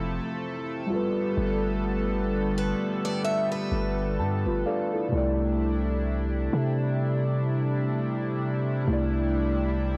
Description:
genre	contemporary R&B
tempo	64 BPM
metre	4/4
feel	swing 58% on 16ths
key	C major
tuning	A4 = 440 Hz
part	muted felt-like synth keys	accompaniment	0.0-10.0 s	C3 to A5	-31 LUFS	equal	chorus, cassette tape
part	chorused pulse-width pad	sustained chords	0.0-10.0 s	C3 to A4	-34 LUFS	equal	cassette tape
part	long sustained 808-style bass	bass	0.0-10.0 s	F1 to C3	-30 LUFS	equal	none
part	picked steel-string acoustic guitar	arpeggios	2.6-4.9 s	B4 to E5	-34 LUFS	equal	cassette tape, tape echo
room	moderate studio reverb, RT60 0.6 s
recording	home recording on cassette, faint mains hum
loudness	-27 LUFS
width	mono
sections	0.0-10.0 A section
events	synth keys fill 3.7-5.1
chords	0.0 Fmaj7; 0.9 G9; 5.1 C69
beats	0.43 | 1.37 2.31 3.25 4.18 | 5.12 6.06 7.00 7.93 | 8.87 9.81

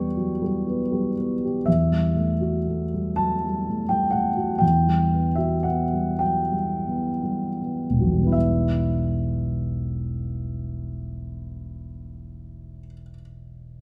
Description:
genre	classical, impressionist solo piano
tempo	25-44 BPM (dotted quarters)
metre	6/8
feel	rubato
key	E dorian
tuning	A4 = 440 Hz
part	warm concert grand piano	solo	0.0-13.8 s	E1 to C#6	-25 LUFS	equal	none
room	moderate concert hall reverb, RT60 1.9 s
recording	none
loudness	-24 LUFS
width	mono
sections	0.0-1.7 A section; 1.7-8.3 B section; 8.3-12.1 C section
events	slowing down 0.2-8.3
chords	0.0 Em6; 1.7 Emadd9; 4.6 Gmaj7/E; 8.3 Em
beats	0.15 | 1.67 3.20 | 4.62 6.23 | 8.34 10.22

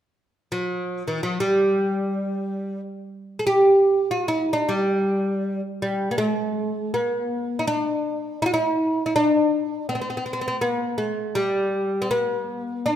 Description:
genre	arabic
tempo	81 BPM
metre	4/4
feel	straight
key	G maqam huzam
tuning	A4 = 440 Hz
part	oud	melody	0.5-13.0 s	E3-50c to Ab4+50c	-21 LUFS	equal	none
room	moderate scoring stage reverb, RT60 1.7 s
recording	minimal, uncompressed stereo recording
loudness	-21 LUFS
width	side -10 dB against mid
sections	0.2-6.2 A section; 6.2-13.0 B section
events	none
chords	none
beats	| 0.22 0.96 1.71 2.45 | 3.19 3.94 4.68 5.42 | 6.17 6.91 7.65 8.40 | 9.14 9.88 10.62 11.36 | 12.11 12.85

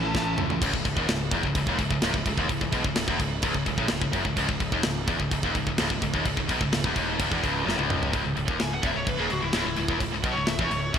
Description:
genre	heavy metal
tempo	128 BPM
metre	4/4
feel	straight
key	C# minor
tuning	A4 = 443 Hz
part	high-gain lead guitar	melody	0.0-0.4, 8.6-11.0 s	E4 to A5	-31 LUFS	left 1 dB	distortion
part	warm analog pad	sustained chords	0.0-8.1 s	C#3 to A4	-40 LUFS	equal	chorus
part	heavy high-gain guitar	riff	0.0-11.0 s	C#2 to E3	-29 LUFS	left 9 dB	distortion
part	overdriven electric guitar	riff	0.0-11.0 s	C#2 to A3	-34 LUFS	equal	none
part	tight distorted guitar	riff	0.0-11.0 s	C#2 to E3	-32 LUFS	right 9 dB	distortion
part	fuzz picked electric bass	bass	0.0-11.0 s	C#1 to C#2	-33 LUFS	equal	overdrive
part	tight metal drum kit	drums	0.1-11.0 s	crash cymbal, kick drum, snare drum, toms	-28 LUFS	equal	gated reverb
room	moderate lush hall reverb, RT60 2.0 s, small room ambience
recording	bright 1980s-style digital production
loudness	-23 LUFS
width	side -8 dB against mid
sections	0.6-8.1 A section; 8.1-11.0 B section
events	drum fill 0.2-0.6, 7.7-8.1; lead electric guitar solo 8.1-11.0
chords	0.0 A; 0.6 C#m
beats	0.16 | 0.63 1.10 1.57 2.04 | 2.51 2.98 3.44 3.91 | 4.38 4.85 5.32 5.79 | 6.26 6.73 7.20 7.67 | 8.14 8.61 9.07 9.54 | 10.01 10.48 10.95

